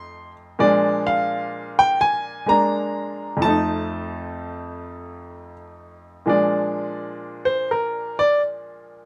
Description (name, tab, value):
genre	solo jazz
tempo	84 BPM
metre	4/4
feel	swing 67% on 8ths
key	Bb mixolydian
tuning	A4 = 440 Hz
part	bright upright piano	solo	0.0-9.1 s	F2 to C6	-22 LUFS	equal	none
room	moderate studio reverb, RT60 0.8 s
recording	none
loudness	-22 LUFS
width	mono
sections	0.0-6.3 A section; 6.3-9.1 B section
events	upright piano solo 6.3-9.1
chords	0.0 F7; 0.6 Bb7; 3.4 F7; 6.3 Bb7